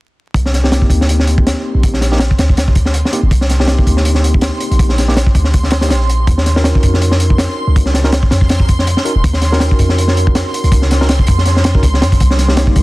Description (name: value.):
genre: drum and bass, jungle.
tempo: 162 BPM.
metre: 4/4.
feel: swing 55% on 16ths.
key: unclear.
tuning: A4 = 440 Hz.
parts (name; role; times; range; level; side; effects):
warm 808-style bass; bass; 0.3-12.8 s; Eb1 to Gb2; -13 LUFS; equal; none.
crunchy breakbeat drum kit; drums; 0.3-12.8 s; hi-hat, kick drum, snare drum; -13 LUFS; equal; none.
backwards swelling texture; texture; 1.3-12.8 s; C6; -25 LUFS; right 2 dB; built-in reverb.
tine electric piano; stabs; 0.6-12.8 s; Bb3 to Bb4; -21 LUFS; equal; fast stereo tremolo, vintage 12-bit sampler grit, dub echo.
warbly tape-like pad; sustained chords; 12.3-12.8 s; G3 to Eb4; -22 LUFS; right 3 dB; chorus, built-in reverb, phaser.
room: small room ambience.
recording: dense, heavily limited modern master, vinyl crackle.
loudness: -10 LUFS.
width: side -20 dB against mid.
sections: 0.4-12.8 A section.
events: none.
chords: 0.4 Cm7; 6.3 Ebm7; 12.2 Cm7.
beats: | 0.35 0.72 1.09 1.46 | 1.83 2.20 2.57 2.94 | 3.31 3.68 4.05 4.42 | 4.79 5.17 5.54 5.91 | 6.28 6.65 7.02 7.39 | 7.76 8.13 8.50 8.87 | 9.24 9.61 9.98 10.35 | 10.72 11.09 11.46 11.83 | 12.20 12.57.